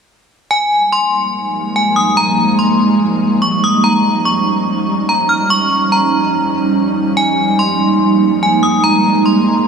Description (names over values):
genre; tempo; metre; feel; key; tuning
hip hop; 144 BPM; 4/4; half-time; F minor; A4 = 440 Hz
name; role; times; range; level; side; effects
metallic FM bell; melody; 0.5-9.6 s; Ab5 to F6; -14 LUFS; left 1 dB; chorus, tape echo
ethereal airy pad; sustained chords; 1.2-9.7 s; F3 to Eb4; -14 LUFS; right 2 dB; ensemble chorus, built-in reverb
room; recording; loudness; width
moderate huge ambient reverb, RT60 6.5 s; studio ambience; -11 LUFS; side -6 dB against mid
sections
0.5-9.7 A section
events
none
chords
0.5 Fm11; 3.8 Eb9; 7.2 Fm11